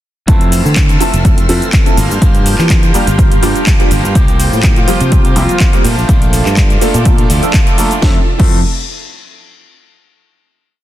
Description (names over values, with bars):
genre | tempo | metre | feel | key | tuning
filtered disco house | 124 BPM | 4/4 | swing 54% on 16ths | F major | A4 = 442 Hz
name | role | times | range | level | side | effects
dark grand piano | accompaniment | 0.3-8.6 s | F3 to A4 | -18 LUFS | right 1 dB | phaser, sidechain pumping
string machine, full ensemble | sustained chords | 0.3-8.2 s | F4 to F6 | -22 LUFS | equal | ensemble chorus, sidechain pumping
electric guitar at the edge of break-up | riff | 0.3-8.6 s | E3 to G4 | -20 LUFS | right 2 dB | vintage 12-bit sampler grit, sidechain pumping
fingered electric bass | bass | 0.3-8.6 s | F1 to E3 | -15 LUFS | equal | sidechain pumping
electronic kick drum | drums | 0.3-8.5 s | none | -11 LUFS | equal | overdrive
house drum kit | drums | 0.3-8.5 s | crash cymbal, handclaps, hi-hat, shaker, snare drum | -19 LUFS | equal | overdrive, sidechain pumping on hats, sidechain pumping on perc, sidechain pumping on cymbals
mellow horn section | melody | 4.8-5.7 s | F3 to F4 | -21 LUFS | left 1 dB | sidechain pumping, digital delay
room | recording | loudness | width
digital ambience | dense, heavily limited modern master | -8 LUFS | side -13 dB against mid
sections
0.3-8.0 drop; 8.0-10.0 final chord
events
drop 0.3-8.0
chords
0.3 Fmaj7; 2.0 Gm7; 4.2 C7sus4; 5.8 Bbmaj7; 8.0 Fmaj7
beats
| 0.28 0.77 1.25 1.73 | 2.22 2.70 3.19 3.67 | 4.15 4.64 5.12 5.61 | 6.09 6.57 7.06 7.54 | 8.02 8.51